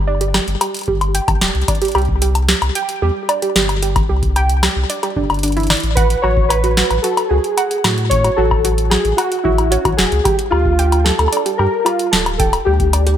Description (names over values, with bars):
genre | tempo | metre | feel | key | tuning
IDM | 112 BPM | 4/4 | straight | unclear | A4 = 440 Hz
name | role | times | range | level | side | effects
warm sub bass | bass | 0.0-13.2 s | D1 to A2 | -17 LUFS | equal | none
warbly dusty pluck | arpeggios | 0.1-13.2 s | D4 to G5 | -21 LUFS | right 4 dB | chorus, ping-pong delay
booming analog drum machine | drums | 0.2-13.2 s | hi-hat, snare drum, woodblock | -19 LUFS | left 2 dB | ping-pong delay
electronic kick drum | drums | 0.9-12.9 s | none | -21 LUFS | equal | none
warbly lo-fi synth keys | melody | 6.0-13.2 s | E4 to C#5 | -18 LUFS | equal | chorus, ping-pong delay
room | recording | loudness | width
light reverb, digital ambience | none | -13 LUFS | side -10 dB against mid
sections
0.0-13.2 A section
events
none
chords
0.0 G5; 1.7 C5; 6.0 Amaj7; 10.3 Dm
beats
0.07 0.61 1.15 | 1.68 2.22 2.75 3.29 | 3.83 4.36 4.90 5.43 | 5.97 6.50 7.04 7.58 | 8.11 8.65 9.18 9.72 | 10.25 10.79 11.32 11.86 | 12.40 12.93